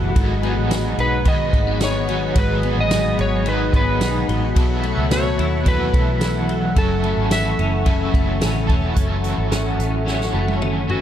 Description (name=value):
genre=dream pop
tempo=109 BPM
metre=4/4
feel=straight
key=F# dorian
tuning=A4 = 438 Hz
part: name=overdriven semi-hollow guitar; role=accompaniment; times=0.0-11.0 s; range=G#2 to A4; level=-27 LUFS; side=right 2 dB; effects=tremolo, ensemble chorus
part: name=warm analog pad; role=sustained chords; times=0.0-11.0 s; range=E4 to C#6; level=-28 LUFS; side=right 1 dB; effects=chorus
part: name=clean electric guitar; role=arpeggios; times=0.0-11.0 s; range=F#2 to E4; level=-24 LUFS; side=left 6 dB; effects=ensemble chorus, digital delay
part: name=vintage muted fingered electric bass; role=bass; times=0.0-11.0 s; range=E1 to D#2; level=-23 LUFS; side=equal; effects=none
part: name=twinkling granular texture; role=texture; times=0.0-11.0 s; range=C#4 to C#5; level=-34 LUFS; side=equal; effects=built-in reverb, digital delay
part: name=vintage drum kit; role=drums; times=0.2-11.0 s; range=hi-hat, kick drum, ride cymbal, snare drum, tambourine, toms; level=-21 LUFS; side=equal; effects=none
part: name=electric slide guitar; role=melody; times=1.0-11.0 s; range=F#4 to E5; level=-24 LUFS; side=right 1 dB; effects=digital delay
room=light reverb, studio reverb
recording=none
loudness=-17 LUFS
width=side -10 dB against mid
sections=0.0-9.0 A section; 9.0-11.0 B section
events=drum fill 10.1-11.0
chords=0.2 G#m7; 4.6 B7sus4; 6.8 F#m7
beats=| 0.16 0.71 1.26 1.81 | 2.36 2.91 3.46 4.01 | 4.56 5.11 5.66 6.21 | 6.76 7.32 7.87 8.42 | 8.97 9.52 10.07 10.62